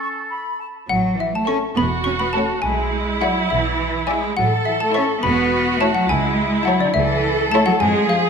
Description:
cinematic, playful, whimsical film cue; 69 BPM (dotted quarters); 6/8; straight; A major; A4 = 439 Hz
bright large flute ensemble; second line; 0.0-0.7 s; A5 to C#6; -29 LUFS; left 1 dB
clear oboe; second line; 0.0-0.6 s; A4; -29 LUFS; right 2 dB
xylophone with plastic mallets; melody; 0.9-8.3 s; D5 to C#6; -22 LUFS; left 4 dB
rich chamber cello section; bass; 0.9-8.3 s; D3 to C#4; -22 LUFS; right 1 dB
warm symphonic double bass section; bass; 0.9-8.3 s; E1 to E#2; -26 LUFS; right 3 dB
rich studio violin section; melody; 1.5-7.7 s; A4 to A5; -32 LUFS; left 5 dB
clear chamber violin section; second line; 1.5-7.7 s; C#4 to D5; -26 LUFS; left 2 dB
clear chamber viola section; accompaniment; 1.8-8.3 s; E4 to A4; -22 LUFS; right 2 dB
wet scoring stage reverb, RT60 1.7 s; minimal, uncompressed stereo recording; -17 LUFS; side -6 dB against mid
0.9-8.3 A section
0.0 N.C.; 0.9 A; 2.6 E7/B; 4.4 A; 6.1 A/C#

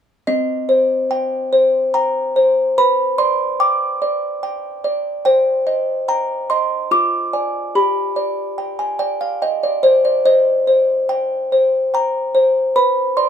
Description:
classical, lullaby for music box; 72 BPM; 3/4; straight; C minor; A4 = 440 Hz
music box; solo; 0.3-13.3 s; C4 to D6; -15 LUFS; equal
moderate studio reverb, RT60 0.5 s; band playing live in one room; -15 LUFS; side -8 dB against mid
0.3-13.3 A section
0.3 Cm; 2.8 G/B; 5.2 Cm; 6.9 Ddim/F; 7.7 G; 10.3 Cm; 12.8 G/B (rootless)

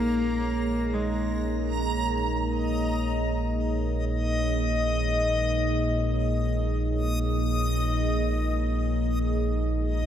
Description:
dark ambient drone; free time; A4 = 441 Hz
rich cello; melody; 0.0-1.4 s; Ab3 to Bb3; -29 LUFS; equal; dub echo
deep dark ambient pad; sustained chords; 0.0-10.1 s; Bb3 to Db5; -29 LUFS; right 1 dB; chorus, built-in reverb
deep rumbling drone; drone; 0.0-10.1 s; Bb1 to Bb2; -27 LUFS; equal; built-in reverb
backwards swelling texture; texture; 0.0-10.1 s; Eb5 to Bb5; -31 LUFS; left 1 dB; built-in reverb
wet spring reverb, RT60 2.5 s; echo-heavy mix; -24 LUFS; side -10 dB against mid
0.0-10.1 A section
filter sweep on synth drone 0.0-10.1
0.0 Absus24/Bb

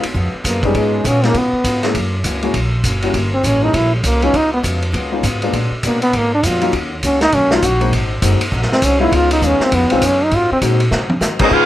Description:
jazz, big band swing; 200 BPM; 4/4; swing 62% on 8ths; Db mixolydian; A4 = 443 Hz
picked acoustic archtop guitar; accompaniment; 0.0-11.7 s; Gb2 to Gb4; -27 LUFS; left 3 dB
upright bass; bass; 0.0-11.7 s; Gb1 to Eb3; -19 LUFS; equal
vintage drum kit; drums; 0.0-11.6 s; crash cymbal, hi-hat, kick drum, ride cymbal, snare drum, toms; -20 LUFS; equal
warm trombone; melody; 0.5-10.6 s; G3 to Gb4; -15 LUFS; equal
warm concert grand piano; accompaniment; 0.6-11.7 s; Gb3 to A4; -20 LUFS; left 4 dB
clear trumpet section; melody; 11.4-11.7 s; C4 to F5; -13 LUFS; right 1 dB
mellow trombone section; second line; 11.4-11.7 s; Gb3 to F4; -17 LUFS; left 2 dB
little or no reverb; -13 LUFS; side -14 dB against mid
0.0-11.5 A section
trombone solo 0.0-11.5; drum fill 10.9
0.0 Db7; 1.9 Gb7; 3.1 Gdim7; 4.3 Db7; 5.5 Bb7b9; 6.7 Ebm7; 7.9 Ab7; 9.1 Db7; 10.3 Ab7

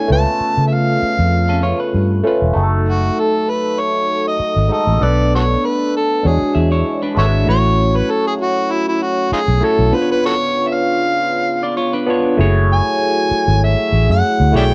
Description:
soul; 98 BPM; 4/4; swing 54% on 16ths; A4 = 439 Hz
overdriven harmonica; melody; 0.0-14.7 s; D#4 to A5; -20 LUFS; equal
barky tine electric piano; accompaniment; 0.0-14.7 s; G3 to C#5; -22 LUFS; equal; overdrive, phaser
mellow French horn section; sustained chords; 0.0-14.7 s; C#3 to A4; -28 LUFS; equal
vintage muted fingered electric bass; bass; 0.1-14.7 s; E1 to C#3; -17 LUFS; equal
clean electric guitar; riff; 1.5-2.5, 6.5-7.5, 11.6-12.4 s; C#4 to E5; -26 LUFS; equal; spring reverb
small room ambience; dry, close 1970s-style studio recording; -16 LUFS; mono
0.0-2.6 A section; 2.6-12.4 B section; 12.4-14.7 C section
harmonica solo 2.6-12.4
0.1 C#7b13; 2.6 F#m69; 5.0 Bm7; 6.2 E13; 7.5 A6; 9.9 C#7b9; 12.4 F#m9

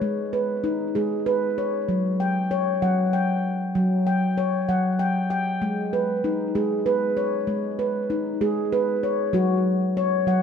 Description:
world meditative, meditative tuned percussion; 64 BPM (dotted quarters); 6/8; straight; G# minor; A4 = 440 Hz
handpan; solo; 0.0-10.4 s; F#3 to G5; -21 LUFS; equal; ping-pong delay
wet echo chamber reverb, RT60 1.9 s; -21 LUFS; side -7 dB against mid
0.0-10.4 A section
0.0 G#m; 1.9 F#5; 5.6 G#m; 9.3 F#5

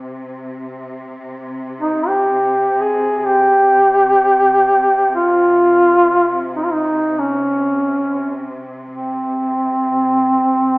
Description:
caucasian folk, Caucasian lament; free time; C phrygian; A4 = 440 Hz
rich studio cello section; drone; 0.0-10.8 s; C3; -28 LUFS; left 1 dB
mellow duduk; melody; 1.8-10.8 s; C4 to Ab4; -13 LUFS; equal
wet recital hall reverb, RT60 1.3 s; recorded in a church or concert hall, small speaker sound; -13 LUFS; side -26 dB against mid
0.0-10.8 A section
slowing down 4.9-10.8

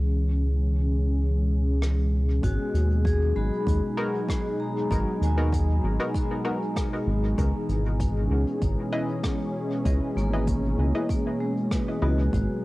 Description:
ambient dub; 97 BPM; 4/4; swing 53% on 16ths; A4 = 439 Hz
warm analog pad; sustained chords; 0.0-12.6 s; B2 to G#4; -29 LUFS; left 1 dB; chorus, cassette tape
round analog bass; bass; 0.0-12.5 s; G#1 to D#2; -23 LUFS; equal
soft brush drum kit; drums; 1.8-12.5 s; hi-hat, rim click; -40 LUFS; equal; cassette tape, dub echo
vibraphone with medium hard mallets; arpeggios; 2.4-12.6 s; G#3 to B5; -33 LUFS; equal; cassette tape, dub echo
electronic kick drum; drums; 2.4-12.5 s; -28 LUFS; equal; overdrive, cassette tape
filtered dub chord stab; stabs; 4.0-12.2 s; B3 to D#5; -34 LUFS; left 1 dB; chorus, cassette tape, dub echo
small room ambience; home recording on cassette; -23 LUFS; side -19 dB against mid
0.0-2.4 A section; 2.4-12.6 B section
0.0 C#m7; 2.4 G#m7; 7.4 C#m7

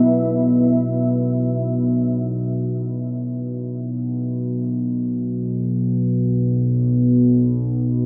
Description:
ambient; free time; A4 = 438 Hz
analog drone; drone; 0.0-8.1 s; B1 to B2; -21 LUFS; equal; chorus
wet cathedral reverb, RT60 6.7 s; small speaker sound; -20 LUFS; mono
0.0-8.1 A section

